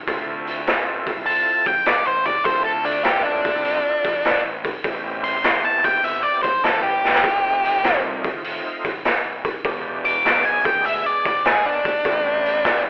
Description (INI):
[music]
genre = blues rock power trio and southern rock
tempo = 100 BPM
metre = 4/4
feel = swing 67% on 8ths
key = A minor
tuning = A4 = 440 Hz
[part]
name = overdriven tonewheel organ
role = sustained chords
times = 0.1-12.9 s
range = G#3 to A4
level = -29 LUFS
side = right 1 dB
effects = slow rotary speaker, chorus vibrato, plate reverb
[part]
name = fuzz fingered electric bass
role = bass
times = 0.1-12.9 s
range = E1 to F2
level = -29 LUFS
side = equal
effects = overdrive
[part]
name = raw garage drum kit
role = drums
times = 0.1-12.8 s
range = hi-hat, kick drum, snare drum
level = -22 LUFS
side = equal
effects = none
[part]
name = octave-fuzz lead guitar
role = melody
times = 1.3-12.8 s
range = D4 to D6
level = -18 LUFS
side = equal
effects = distortion, plate reverb
[sound]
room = moderate club reverb, RT60 0.5 s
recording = telephone sound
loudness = -17 LUFS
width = side -30 dB against mid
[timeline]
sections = 0.0-12.9 A section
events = lead electric guitar solo 0.0-12.9; drum fill 6.9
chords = 0.0 Dm7; 4.8 Am7; 7.2 F7; 9.6 E7#9; 12.0 Am7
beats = | 0.07 0.67 1.26 1.86 | 2.45 3.05 3.65 4.25 | 4.85 5.45 6.04 6.64 | 7.24 7.84 8.45 9.04 | 9.64 10.25 10.85 11.45 | 12.05 12.65